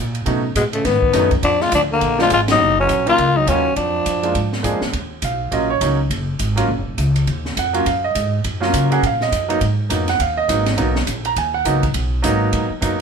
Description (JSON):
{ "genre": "jazz, small-group swing and bop", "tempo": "205 BPM", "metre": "4/4", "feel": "swing 61% on 8ths", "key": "Eb minor", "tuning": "A4 = 440 Hz", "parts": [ { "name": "upright bass", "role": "bass", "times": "0.0-13.0 s", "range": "Eb1 to Db3", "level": "-21 LUFS", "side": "equal", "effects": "none" }, { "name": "open jazz drum kit", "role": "drums", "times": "0.1-12.9 s", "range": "hi-hat, kick drum, ride cymbal, snare drum", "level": "-24 LUFS", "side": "right 1 dB", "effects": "none" }, { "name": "clear grand piano", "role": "accompaniment", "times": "0.3-13.0 s", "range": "Eb3 to Bb5", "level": "-20 LUFS", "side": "right 3 dB", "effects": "none" }, { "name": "growling tenor saxophone", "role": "melody", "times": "0.6-4.6 s", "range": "Ab3 to F4", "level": "-16 LUFS", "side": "left 4 dB", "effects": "none" }, { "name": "mellow trombone", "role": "second line", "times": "0.6-4.6 s", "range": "B2 to Bb3", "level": "-24 LUFS", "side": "right 4 dB", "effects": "none" } ], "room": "moderate small room reverb, RT60 0.5 s", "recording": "band playing live in one room", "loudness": "-16 LUFS", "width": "side -6 dB against mid", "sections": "0.0-4.9 A section; 4.9-13.0 B section", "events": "band accent 2.4", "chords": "0.3 B7; 1.4 Bb7; 2.6 Ebm7; 3.8 Bb7; 4.9 Ebm7; 9.6 Abm7", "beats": "| 0.26 0.55 0.84 1.13 | 1.42 1.72 2.01 2.30 | 2.59 2.88 3.18 3.47 | 3.76 4.05 4.35 4.64 | 4.93 5.22 5.51 5.81 | 6.10 6.39 6.68 6.98 | 7.27 7.56 7.85 8.14 | 8.44 8.73 9.02 9.31 | 9.61 9.90 10.19 10.48 | 10.78 11.07 11.36 11.65 | 11.94 12.24 12.53 12.82" }